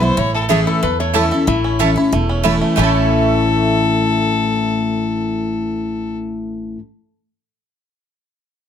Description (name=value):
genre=bluegrass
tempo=184 BPM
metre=4/4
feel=straight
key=A major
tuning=A4 = 443 Hz
part: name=bluegrass banjo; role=melody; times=0.0-6.8 s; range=E3 to A4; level=-24 LUFS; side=right 4 dB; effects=tape echo
part: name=clear fiddle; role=melody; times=0.0-0.4, 2.8-6.2 s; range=A4 to C#5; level=-22 LUFS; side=left 6 dB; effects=none
part: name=picked steel-string acoustic guitar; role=accompaniment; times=0.0-6.8 s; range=E2 to E4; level=-18 LUFS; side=left 2 dB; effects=none
part: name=upright bass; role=bass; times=0.0-6.7 s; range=E1 to E2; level=-22 LUFS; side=right 1 dB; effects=none
part: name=lap resonator guitar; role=second line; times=0.5-6.7 s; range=E4 to C#5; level=-23 LUFS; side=left 7 dB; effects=none
part: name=mandolin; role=stabs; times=0.5-6.8 s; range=A3 to A5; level=-21 LUFS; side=right 8 dB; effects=none
room=light reverb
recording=close, detailed microphones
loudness=-14 LUFS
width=side -8 dB against mid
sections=0.0-1.5 A section; 1.5-2.8 B section; 2.8-5.4 C section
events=none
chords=0.2 A